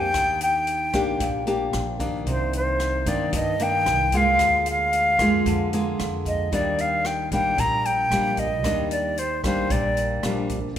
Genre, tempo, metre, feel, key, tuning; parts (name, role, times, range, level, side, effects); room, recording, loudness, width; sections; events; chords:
bossa nova; 113 BPM; 4/4; straight; A4 = 441 Hz
breathy silver concert flute; melody; 0.0-10.2 s; C5 to Bb5; -22 LUFS; equal
nylon-string guitar; accompaniment; 0.0-10.8 s; F2 to G4; -26 LUFS; left 1 dB
upright bass; bass; 0.0-10.8 s; Bb1 to G2; -30 LUFS; right 1 dB
open jazz drum kit; drums; 0.1-10.8 s; hi-hat, kick drum, rim click; -32 LUFS; right 1 dB
moderate recital hall reverb, RT60 1.4 s; recorded in a church or concert hall; -20 LUFS; side -10 dB against mid
0.0-10.8 A section
0.1 Ebmaj7; 2.3 Cm9; 4.4 Bb7/D; 6.5 Ebmaj7